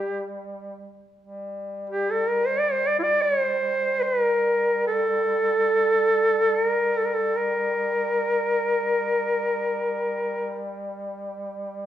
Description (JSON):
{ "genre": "caucasian folk, Caucasian lament", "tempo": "free time", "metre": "none", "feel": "none", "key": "G minor", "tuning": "A4 = 445 Hz", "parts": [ { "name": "warm duduk", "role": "melody", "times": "0.0-10.6 s", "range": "E4 to D5", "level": "-21 LUFS", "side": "equal", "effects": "none" }, { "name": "warm duduk", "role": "drone", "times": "0.0-11.9 s", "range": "G3", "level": "-33 LUFS", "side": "equal", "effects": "none" } ], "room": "moderate recital hall reverb, RT60 1.7 s", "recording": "minimal, uncompressed stereo recording", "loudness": "-21 LUFS", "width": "side -11 dB against mid", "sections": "0.0-1.2 A section; 1.2-11.9 A section", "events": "none", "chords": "none" }